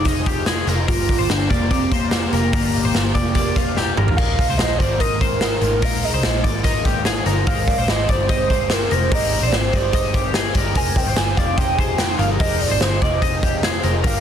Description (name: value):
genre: jangly indie pop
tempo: 146 BPM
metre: 4/4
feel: straight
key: unclear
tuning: A4 = 440 Hz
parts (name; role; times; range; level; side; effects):
- warbly nostalgic lead; melody; 0.0-14.2 s; Bb3 to Ab5; -23 LUFS; right 2 dB; chorus, tape echo
- chorused retro synth keys; accompaniment; 0.0-14.2 s; Bb3 to Bb5; -30 LUFS; equal; phaser
- raw garage guitar; accompaniment; 0.0-14.2 s; Eb3 to G4; -32 LUFS; right 4 dB; overdrive, spring reverb
- phased analog pad; sustained chords; 0.0-14.2 s; F3 to C6; -30 LUFS; right 1 dB; phaser, chorus
- twelve-string electric guitar; arpeggios; 0.0-14.2 s; F4 to Eb5; -26 LUFS; left 9 dB; lush chorus
- vintage muted picked electric bass; bass; 0.0-14.2 s; F1 to C2; -23 LUFS; equal; none
- raw garage drum kit; drums; 0.0-14.1 s; crash cymbal, hi-hat, kick drum, snare drum, toms; -20 LUFS; equal; none
room: light reverb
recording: dense, heavily limited modern master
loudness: -16 LUFS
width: side -9 dB against mid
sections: 0.0-4.2 A section; 4.2-14.2 A section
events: synth keys fill 3.6-4.2; drum fill 3.8-4.2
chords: 0.0 Fm7; 0.9 Gm7; 4.2 Bb7sus4; 7.5 Fm7